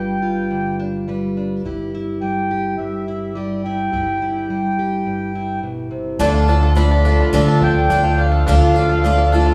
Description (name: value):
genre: folk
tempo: 105 BPM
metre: 4/4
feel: straight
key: unclear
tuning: A4 = 437 Hz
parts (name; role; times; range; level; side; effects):
- mellow accordion; melody; 0.0-9.5 s; D5 to B5; -24 LUFS; equal; none
- fingerpicked plugged-in steel-string acoustic guitar; accompaniment; 0.0-6.2 s; G2 to B4; -25 LUFS; equal; none
- upright bass; bass; 0.0-9.4 s; G1 to D3; -21 LUFS; equal; none
- picked twelve-string acoustic guitar; accompaniment; 6.2-9.5 s; D3 to A4; -22 LUFS; equal; none
- pedal harmonium; sustained chords; 6.2-9.5 s; D3 to A3; -27 LUFS; equal; none
- bluegrass banjo; arpeggios; 6.2-9.5 s; D4 to D5; -26 LUFS; equal; none
room: moderate recital hall reverb, RT60 1.5 s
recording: recorded in a church or concert hall, studio reverb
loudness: -18 LUFS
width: mono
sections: 0.0-6.2 A section; 6.2-9.5 B section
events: none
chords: 0.0 G7; 1.6 C/G (rootless); 6.2 Dm